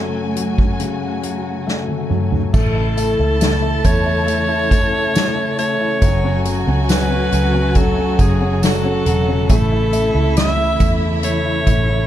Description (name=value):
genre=pop ballad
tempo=69 BPM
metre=4/4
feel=straight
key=A major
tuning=A4 = 440 Hz
part: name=bright alto saxophone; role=melody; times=0.0-12.1 s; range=G#4 to E5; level=-21 LUFS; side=right 1 dB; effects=none
part: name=warm concert grand piano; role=accompaniment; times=0.0-12.1 s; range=F#2 to E4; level=-22 LUFS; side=left 4 dB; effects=none
part: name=dark studio string section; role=sustained chords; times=0.0-12.1 s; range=C#3 to G#5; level=-24 LUFS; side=right 2 dB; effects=none
part: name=soft-mallet drum kit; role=drums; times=0.4-11.9 s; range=crash cymbal, hi-hat, kick drum, snare drum, toms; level=-18 LUFS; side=equal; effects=none
part: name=warm studio violin section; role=second line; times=2.5-12.1 s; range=E4 to A5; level=-26 LUFS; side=right 1 dB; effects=none
part: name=vintage muted fingered electric bass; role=bass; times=2.5-12.1 s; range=E1 to E2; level=-19 LUFS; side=right 1 dB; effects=none
part: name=tambourine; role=percussion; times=2.5-11.9 s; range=none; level=-35 LUFS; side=right 13 dB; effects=none
room=small room reverb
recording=dark, warm production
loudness=-14 LUFS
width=side -12 dB against mid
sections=0.0-2.5 A section; 2.5-12.1 B section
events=drum fill 1.7-2.5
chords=0.0 F#madd9; 2.5 A; 6.0 F#madd9; 9.5 A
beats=0.80 1.67 | 2.54 3.41 4.28 5.15 | 6.02 6.89 7.76 8.63 | 9.50 10.37 11.24